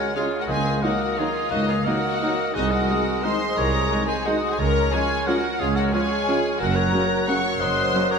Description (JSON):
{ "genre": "classical, orchestral ballroom waltz", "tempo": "177 BPM", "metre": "3/4", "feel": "uneven beats, rubato", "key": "Db major", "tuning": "A4 = 442 Hz", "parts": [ { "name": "warm studio violin section", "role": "melody", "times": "0.0-8.2 s", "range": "Eb5 to Db6", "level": "-29 LUFS", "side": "left 2 dB", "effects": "none" }, { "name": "mellow clarinet", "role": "second line", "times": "0.0-8.2 s", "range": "Bb4 to Eb5", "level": "-31 LUFS", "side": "equal", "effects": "none" }, { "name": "mellow hollow small flute group", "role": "second line", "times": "0.0-8.2 s", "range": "Eb6 to Gb6", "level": "-30 LUFS", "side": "left 4 dB", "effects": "none" }, { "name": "warm oboe", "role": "second line", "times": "0.0-8.2 s", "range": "Gb4 to Gb5", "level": "-30 LUFS", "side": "equal", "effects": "none" }, { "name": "warm symphonic violin section", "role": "second line", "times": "0.0-8.2 s", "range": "Eb4 to Db5", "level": "-28 LUFS", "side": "left 4 dB", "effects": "none" }, { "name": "warm bassoon", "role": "accompaniment", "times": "0.0-8.2 s", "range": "Gb3 to Bb3", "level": "-29 LUFS", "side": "right 4 dB", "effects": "none" }, { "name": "mellow French horn section", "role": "sustained chords", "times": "0.1-8.1 s", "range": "Ab3 to Gb4", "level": "-33 LUFS", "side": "left 2 dB", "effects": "none" }, { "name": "rich symphonic viola section", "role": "accompaniment", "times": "0.2-8.0 s", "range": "F3 to F4", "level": "-31 LUFS", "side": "right 1 dB", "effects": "none" }, { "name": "bright trombone section", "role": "sustained chords", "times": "0.2-8.1 s", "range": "Db3 to Ab3", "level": "-34 LUFS", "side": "right 4 dB", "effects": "none" }, { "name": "clear symphonic cello section", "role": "bass", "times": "0.5-7.9 s", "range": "C2 to Gb2", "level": "-29 LUFS", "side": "right 1 dB", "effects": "none" }, { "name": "clear symphonic double bass section", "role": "bass", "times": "0.5-7.9 s", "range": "Gb1 to Db2", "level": "-28 LUFS", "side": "right 2 dB", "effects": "none" }, { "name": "timpani", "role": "percussion", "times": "0.5-1.0 s", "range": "Db3", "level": "-36 LUFS", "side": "right 4 dB", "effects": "none" } ], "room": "wet concert hall reverb, RT60 1.9 s", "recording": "none", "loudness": "-20 LUFS", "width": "side -5 dB against mid", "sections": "0.0-8.2 A section", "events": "none", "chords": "0.5 Ebm7/Db; 2.5 Ab7/C; 4.6 Db; 6.6 Gb", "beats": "0.16 | 0.49 0.83 1.18 | 1.52 1.86 2.21 | 2.55 2.89 3.25 | 3.58 3.91 4.26 | 4.59 4.93 5.28 | 5.60 5.93 6.28 | 6.60 6.93 7.28 | 7.61 7.94" }